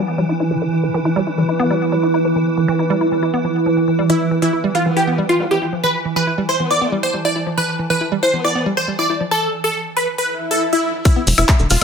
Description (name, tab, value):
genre	psychedelic trance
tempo	138 BPM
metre	4/4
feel	straight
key	E phrygian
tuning	A4 = 440 Hz
part	swarming drone	sustained chords	0.0-11.8 s	E3	-23 LUFS	right 2 dB	built-in reverb, sidechain pumping
part	deep dark ambient pad	texture	0.0-9.3 s	E4 to B5	-22 LUFS	right 3 dB	chorus, built-in reverb, sidechain pumping
part	woody wave-folded pluck	riff	0.2-11.8 s	D3 to E4	-21 LUFS	moving between left 4 dB and right 2 dB	chorus, auto-pan, sidechain pumping, ping-pong delay
part	supersaw stab	melody	4.1-11.8 s	E4 to D5	-18 LUFS	equal	phaser, sidechain pumping, tape echo
part	formant-sweep wobble bass	second line	4.9-8.7, 11.8 s	B3	-30 LUFS	left 3 dB	chorus, sidechain pumping, high-pass filter, tape echo
part	swell	sound effects	10.3-11.1 s	none	-22 LUFS	left 2 dB	none
part	drum and bass drum kit	drums	11.1-11.8 s	handclaps, hi-hat, woodblock	-18 LUFS	left 3 dB	overdrive, studio reverb
part	electronic kick drum	drums	11.1-11.6 s	none	-13 LUFS	left 1 dB	studio reverb
part	maracas	percussion	11.1-11.8 s	none	-25 LUFS	right 1 dB	none
part	tight sequencer bass	bass	11.3-11.8 s	E1	-16 LUFS	left 1 dB	none
room	moderate lush hall reverb, RT60 1.6 s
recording	none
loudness	-15 LUFS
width	side -6 dB against mid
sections	0.0-11.1 A section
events	filter sweep on synth arpeggio sound 0.0-11.1; swell 10.3-11.1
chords	0.0 E5